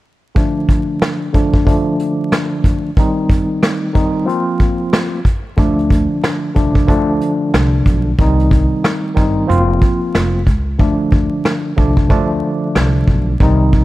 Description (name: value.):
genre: hip hop, boom-bap hip-hop.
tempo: 92 BPM.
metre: 4/4.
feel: swing 63% on 16ths.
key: unclear.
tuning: A4 = 439 Hz.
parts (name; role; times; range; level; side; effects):
tine electric piano; accompaniment; 0.3-13.8 s; D3 to F4; -16 LUFS; equal; medium stereo tremolo, cassette tape, high-pass filter, low-pass filter.
vintage brush drum kit; drums; 0.4-13.8 s; hi-hat, kick drum, rim click, snare drum; -15 LUFS; equal; none.
upright bass; bass; 5.6-13.8 s; F1 to D2; -16 LUFS; equal; none.
room: small room ambience.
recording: vinyl crackle.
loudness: -12 LUFS.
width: side -17 dB against mid.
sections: 0.4-10.8 A section; 10.8-13.8 B section.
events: filter sweep on tine electric piano 0.4-10.8; hi-hats muted 10.8-13.8.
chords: 0.4 Dm; 3.0 Cm; 4.3 Fsus4; 5.6 Dm; 8.2 Cm; 9.5 Fsus4; 10.8 Dm.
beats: | 0.36 1.01 1.66 2.32 | 2.97 3.62 4.27 4.92 | 5.58 6.23 6.88 7.53 | 8.19 8.84 9.49 10.14 | 10.79 11.45 12.10 12.75 | 13.40.